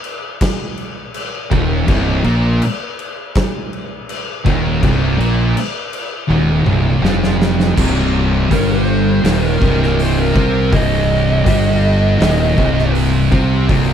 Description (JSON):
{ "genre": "stoner and doom metal", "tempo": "82 BPM", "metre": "4/4", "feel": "straight", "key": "C minor", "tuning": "A4 = 441 Hz", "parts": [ { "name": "oversized low-tuned drum kit", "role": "drums", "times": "0.0-13.9 s", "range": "crash cymbal, hi-hat, kick drum, snare drum, toms", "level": "-19 LUFS", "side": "equal", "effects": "none" }, { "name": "scooped high-gain guitar", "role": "riff", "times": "1.5-13.9 s", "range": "C2 to C4", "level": "-24 LUFS", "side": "equal", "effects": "distortion" }, { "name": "thick fuzz guitar", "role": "riff", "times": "1.5-13.9 s", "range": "C2 to C4", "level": "-19 LUFS", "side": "left 8 dB", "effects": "distortion" }, { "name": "thick fuzz guitar", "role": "riff", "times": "1.5-13.9 s", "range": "C2 to C4", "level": "-19 LUFS", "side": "right 10 dB", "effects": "distortion" }, { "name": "fuzz fingered electric bass", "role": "bass", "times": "1.5-13.9 s", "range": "C1 to C2", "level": "-17 LUFS", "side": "equal", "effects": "overdrive" }, { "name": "fuzz lead guitar", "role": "melody", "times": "8.5-12.9 s", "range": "Bb4 to Eb5", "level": "-20 LUFS", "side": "right 2 dB", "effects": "distortion, slapback echo" } ], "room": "studio reverb", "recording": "none", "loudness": "-12 LUFS", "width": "side -9 dB against mid", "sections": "0.0-7.8 A section; 7.8-13.9 B section", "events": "drum fill 6.3-7.8; lead electric guitar solo 7.8-13.9", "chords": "0.0 Cm" }